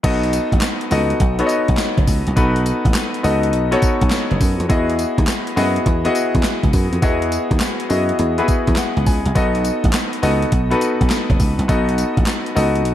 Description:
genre	R&B, new jack swing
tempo	103 BPM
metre	4/4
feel	swing 66% on 16ths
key	unclear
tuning	A4 = 440 Hz
part	clear grand piano	accompaniment	0.0-12.9 s	B3 to G#5	-19 LUFS	left 2 dB	none
part	dry thumbed slap bass	bass	0.0-12.9 s	F#1 to F#2	-19 LUFS	right 1 dB	none
part	gated 80s digital drum machine	drums	0.0-12.9 s	crash cymbal, handclaps, hi-hat, kick drum, snare drum, tambourine	-19 LUFS	equal	gated reverb, gated reverb snare, overdrive
room	light reverb, digital ambience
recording	dark, warm production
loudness	-15 LUFS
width	side -12 dB against mid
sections	0.0-12.9 A section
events	grand piano fill 8.5-9.4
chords	0.0 B7; 4.7 Emaj9; 9.4 B7

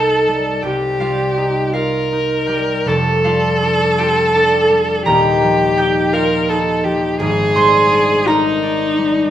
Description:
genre	classical, impressionist duo for viola and harp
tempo	56 BPM (dotted quarters)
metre	6/8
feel	rubato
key	unclear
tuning	A4 = 440 Hz
part	rich viola	melody	0.0-9.3 s	Eb4 to Bb4	-16 LUFS	left 1 dB	none
part	concert harp	accompaniment	0.0-9.3 s	Eb1 to C6	-16 LUFS	right 2 dB	none
room	moderate recital hall reverb, RT60 1.2 s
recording	none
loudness	-13 LUFS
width	side -11 dB against mid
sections	0.0-9.3 A section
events	none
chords	0.0 Cm7; 0.7 Ebadd9/C; 2.9 F69; 5.1 Ebadd9; 7.2 Abmaj7#11

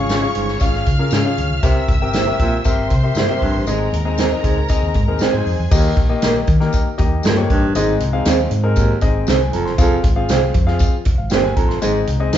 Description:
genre	uptempo 1960s-style soul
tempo	118 BPM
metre	4/4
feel	straight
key	Ab major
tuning	A4 = 440 Hz
part	clear symphonic violin section	second line	0.0-5.7 s	Ab4 to F6	-26 LUFS	equal	none
part	warm concert grand piano	accompaniment	0.0-12.4 s	Ab2 to C6	-22 LUFS	left 4 dB	none
part	hollow-body short-scale fingered electric bass	bass	0.0-12.4 s	F1 to Eb3	-20 LUFS	equal	none
part	mellow electric guitar	stabs	0.1-12.4 s	Bb3 to Db5	-23 LUFS	right 5 dB	spring reverb
part	natural country drum kit	drums	0.1-12.4 s	crash cymbal, hi-hat, kick drum, snare drum	-18 LUFS	equal	none
part	tambourine	percussion	0.1-12.4 s	none	-35 LUFS	left 6 dB	none
part	warm baritone saxophone	riff	0.4-12.0 s	Eb2 to C3	-23 LUFS	right 2 dB	none
room	moderate large studio reverb, RT60 1.2 s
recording	band playing live in one room, nothing above 7.6 kHz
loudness	-14 LUFS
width	side -10 dB against mid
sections	0.0-5.7 A section; 5.7-12.4 B section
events	none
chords	0.0 Db; 1.6 C7; 3.7 Ab; 5.7 Eb; 7.8 Ab; 9.8 Fm; 11.8 Ab

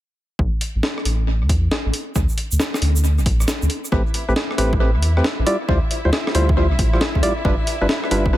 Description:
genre	UK garage, two-step garage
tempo	136 BPM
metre	4/4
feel	swing 66% on 16ths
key	A minor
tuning	A4 = 440 Hz
part	saturated sub bass	bass	0.4-8.4 s	G1 to E2	-19 LUFS	equal	tube saturation
part	electronic kick drum	drums	0.4-8.3 s	none	-21 LUFS	equal	none
part	breakbeat sampler-style drum kit	drums	0.6-8.2 s	hi-hat, rim click, snare drum	-24 LUFS	equal	tape echo
part	egg shaker	percussion	2.2-3.9 s	none	-30 LUFS	right 4 dB	tape echo
part	muted symphonic violin section	sustained chords	3.9-8.4 s	E4 to E5	-30 LUFS	left 1 dB	sidechain pumping
part	percussive organ stab	stabs	3.9-8.4 s	G3 to D5	-22 LUFS	equal	chorus, tape echo
part	warbly tape-like pad	texture	5.6-8.4 s	A4 to C6	-41 LUFS	left 3 dB	none
room	digital ambience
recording	echo-heavy mix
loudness	-17 LUFS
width	side -14 dB against mid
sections	0.4-3.9 A section; 3.9-8.4 B section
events	none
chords	0.4 A5; 1.9 D5; 3.9 Am9; 5.5 Dm11; 7.5 G7

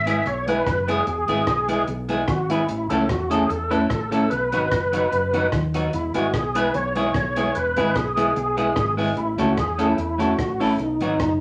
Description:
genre	ska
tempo	148 BPM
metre	4/4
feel	swing 54% on 8ths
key	E major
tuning	A4 = 440 Hz
part	tonewheel organ	melody	0.0-11.4 s	D#4 to E5	-26 LUFS	equal	overdrive, chorus vibrato, slow rotary speaker
part	fingered electric bass	bass	0.0-11.4 s	E1 to E2	-31 LUFS	equal	none
part	semi-hollow electric guitar	accompaniment	0.1-11.1 s	F#3 to A4	-26 LUFS	equal	none
part	compact cocktail drum kit	drums	0.1-11.3 s	hi-hat, kick drum, rim click	-31 LUFS	equal	slapback echo
room	wet studio reverb, RT60 0.5 s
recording	none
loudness	-22 LUFS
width	mono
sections	0.0-11.4 A section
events	none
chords	0.0 E; 2.7 A; 4.3 B; 5.9 E; 9.2 A; 10.8 B

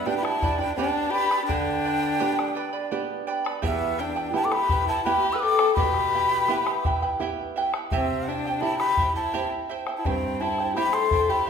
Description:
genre	andean folk, Andean ensemble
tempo	84 BPM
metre	3/4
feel	straight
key	E minor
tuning	A4 = 440 Hz
part	breathy quena	melody	0.0-11.5 s	E5 to E6	-25 LUFS	left 2 dB	none
part	dark violin	second line	0.0-11.5 s	B3 to B4	-28 LUFS	left 5 dB	none
part	charango	accompaniment	0.0-11.5 s	E4 to B5	-29 LUFS	right 4 dB	none
part	flamenco guitar	accompaniment	0.0-11.3 s	E2 to G4	-32 LUFS	right 6 dB	none
part	bombo	percussion	0.1-11.3 s	none	-30 LUFS	left 1 dB	none
room	wet recital hall reverb, RT60 1.5 s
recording	minimal, uncompressed stereo recording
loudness	-22 LUFS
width	side -7 dB against mid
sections	0.0-11.5 A section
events	none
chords	0.0 G; 3.6 Em; 7.9 C

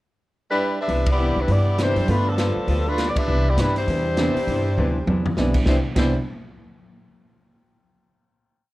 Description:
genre	jazz, big band swing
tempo	201 BPM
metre	4/4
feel	swing 61% on 8ths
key	C major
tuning	A4 = 440 Hz
part	warm saxophone section	melody	0.5-6.1 s	F3 to E5	-23 LUFS	equal	none
part	archtop guitar, miked and amplified	accompaniment	0.9-6.1 s	C3 to A4	-28 LUFS	left 2 dB	none
part	upright bass	bass	0.9-6.1 s	B1 to G2	-22 LUFS	equal	none
part	swinging big-band drum kit	drums	0.9-6.0 s	crash cymbal, hi-hat, kick drum, ride cymbal, snare drum, toms	-26 LUFS	equal	none
part	warm upright piano	accompaniment	1.8-6.1 s	D3 to F4	-26 LUFS	right 2 dB	none
room	moderate club reverb, RT60 0.7 s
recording	worn, warbling old tape, cassette tape, warbly pitch drift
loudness	-18 LUFS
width	side -18 dB against mid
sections	0.0-0.9 pickup bar; 0.9-5.7 A section; 5.7-6.9 final chord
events	band accent 1.0, 3.1; drum fill 4.8-5.4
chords	0.0 G6; 0.9 Cmaj9; 2.1 G9; 3.3 Cmaj9

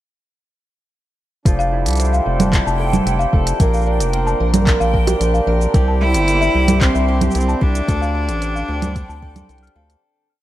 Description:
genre	folktronica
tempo	112 BPM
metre	4/4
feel	straight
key	F major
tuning	A4 = 438 Hz
part	mellow accordion	sustained chords	1.5-10.0 s	D3 to C4	-27 LUFS	right 1 dB	stereo widening
part	picked twelve-string acoustic guitar	arpeggios	1.5-10.4 s	Bb2 to Bb4	-23 LUFS	right 1 dB	low-pass filter, tape echo
part	round analog bass	bass	1.5-10.0 s	F1 to D2	-18 LUFS	equal	none
part	electronic kick drum	drums	1.5-9.3 s	none	-16 LUFS	equal	none
part	organic electronic drum kit	drums	1.5-10.0 s	congas, handclaps, hi-hat, shaker	-20 LUFS	right 3 dB	none
part	backwards swelling texture	texture	2.0-10.0 s	G5	-31 LUFS	right 2 dB	built-in reverb
part	folk marimba with medium hard mallets	second line	1.6-9.9 s	E5 to F6	-26 LUFS	left 3 dB	tape echo
part	clear cello	melody	6.0-9.8 s	C4 to E4	-20 LUFS	right 1 dB	none
room	light reverb, small room ambience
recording	none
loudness	-14 LUFS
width	side -14 dB against mid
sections	1.5-10.0 groove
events	fade-out 7.2-10.0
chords	1.5 Fmaj7; 3.6 Bb; 5.7 C7; 7.9 Dm7

